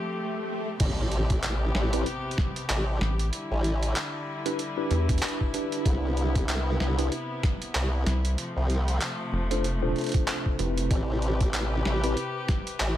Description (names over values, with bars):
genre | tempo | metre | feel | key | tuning
glitch hop | 95 BPM | 4/4 | swing 58% on 16ths | A minor | A4 = 438 Hz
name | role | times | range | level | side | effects
rich chamber string section | sustained chords | 0.0-13.0 s | C3 to B4 | -34 LUFS | left 2 dB | sidechain pumping
swell and impact | sound effects | 0.0-3.3 s | none | -35 LUFS | equal | none
formant-sweep wobble bass | bass | 0.8-13.0 s | A1 to C2 | -26 LUFS | equal | chorus
boom bap sampler-style drum kit | drums | 0.8-12.9 s | crash cymbal, handclaps, hi-hat, snare drum | -32 LUFS | right 1 dB | none
electronic kick drum | drums | 0.8-12.6 s | none | -26 LUFS | equal | none
mellow tine electric piano | stabs | 1.9-12.2 s | C4 to C5 | -32 LUFS | equal | medium stereo tremolo, vintage 12-bit sampler grit, sidechain pumping, ping-pong delay
rubbery square bass | bass | 3.0-10.9 s | F1 to E2 | -26 LUFS | equal | tube saturation
room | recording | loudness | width
little or no reverb | vinyl crackle | -25 LUFS | side -12 dB against mid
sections
0.8-13.0 A section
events
break 0.0-0.8; swell 0.0-0.8; drop 0.8-13.0; impact 0.8-3.3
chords
0.0 G9sus4; 0.8 Am9; 3.3 Em7; 5.9 Cmaj7; 8.4 G9sus4; 10.9 Am9